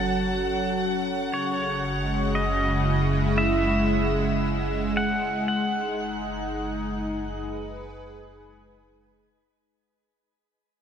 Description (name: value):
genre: ambient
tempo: 58 BPM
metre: 4/4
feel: straight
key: unclear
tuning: A4 = 443 Hz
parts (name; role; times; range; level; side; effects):
- pedal steel guitar; melody; 0.0-8.6 s; C#5 to A5; -29 LUFS; equal; diffuse ambient delay
- warm analog pad; sustained chords; 0.0-9.7 s; C#3 to B4; -26 LUFS; equal; chorus
- deep rumbling drone; bass; 0.0-9.7 s; F#1; -31 LUFS; equal; built-in reverb
- warm chamber violin section; texture; 0.0-9.7 s; F#5; -35 LUFS; right 2 dB; none
room: moderate shimmer reverb, RT60 8.5 s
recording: none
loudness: -23 LUFS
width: side -8 dB against mid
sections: 0.0-9.7 A section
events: fade-in on pedal steel guitar 0.0-9.7; fade-out on violin section 0.0-9.7; fade-out 4.1-9.7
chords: 0.0 F#m; 1.3 C#madd9/F#; 5.5 G#m7/F#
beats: 0.29 | 1.32 2.35 3.39 4.43 | 5.47 6.51 7.57 8.64